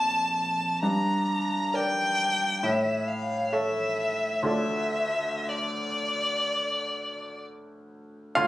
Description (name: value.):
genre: classical, romantic duo for violin and grand piano.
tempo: 60-70 BPM.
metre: 4/4.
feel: rubato.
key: D minor.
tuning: A4 = 439 Hz.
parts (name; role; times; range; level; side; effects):
rich violin; melody; 0.0-7.4 s; D5 to Bb5; -26 LUFS; left 1 dB; none.
clear grand piano; accompaniment; 0.0-8.5 s; Bb1 to F5; -29 LUFS; equal; none.
room: light reverb.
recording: recorded on a phone in the room, club reverb.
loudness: -25 LUFS.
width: side -16 dB against mid.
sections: 0.0-8.4 A section.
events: none.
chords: 0.0 Bbmaj7; 0.8 Gm; 2.6 A; 4.5 Dm.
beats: | 0.83 1.74 2.64 3.53 | 4.49 5.47 6.44 7.41 | 8.36.